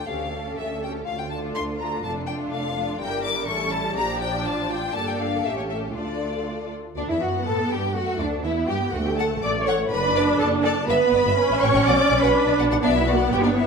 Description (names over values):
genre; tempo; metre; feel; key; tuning
quick classical-period movement for string orchestra; 123 BPM; 2/4; straight; D minor, D major from 7.0 s; A4 = 440 Hz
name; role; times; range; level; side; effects
rich symphonic violin section; melody; 0.0-13.7 s; D4 to D6; -29 LUFS; left 6 dB; none
clear symphonic violin section; second line; 0.0-13.7 s; D4 to D6; -30 LUFS; left 5 dB; none
warm symphonic viola section; accompaniment; 0.0-13.7 s; F3 to D4; -25 LUFS; equal; none
rich symphonic double bass section; bass; 0.0-13.7 s; F1 to A2; -29 LUFS; right 3 dB; none
warm symphonic cello section; bass; 0.0-13.7 s; D4 to D5; -26 LUFS; right 3 dB; none
room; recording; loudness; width
wet recital hall reverb, RT60 1.3 s; none; -20 LUFS; side -5 dB against mid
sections
0.0-7.0 A section; 7.0-13.7 A section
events
none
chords
0.1 A7/D; 1.1 Dm; 2.0 Dm/F; 3.0 Em7b5/G; 3.5 A7; 4.0 Bb; 4.9 Gm; 5.4 A7; 5.9 Dm; 7.0 D; 9.9 D/F#; 10.9 Em (rootless); 11.4 A; 11.9 Bm; 12.8 E5/B